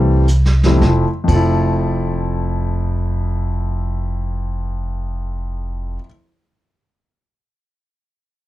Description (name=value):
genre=jazz piano trio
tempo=free time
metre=none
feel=none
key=F major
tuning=A4 = 441 Hz
part: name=warm concert grand piano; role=melody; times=0.0-6.1 s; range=F2 to F5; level=-20 LUFS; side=left 2 dB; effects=none
part: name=upright bass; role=bass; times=0.0-6.0 s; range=F1 to C2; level=-18 LUFS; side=equal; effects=none
part: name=vintage brush drum kit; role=drums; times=0.3-1.4 s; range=crash cymbal, hi-hat, kick drum, snare drum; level=-23 LUFS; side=right 2 dB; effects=none
room=light reverb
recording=dark, warm production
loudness=-16 LUFS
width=side -15 dB against mid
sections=0.8-5.2 A section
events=drum fill 0.3-0.8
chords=0.0 Fmaj7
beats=free time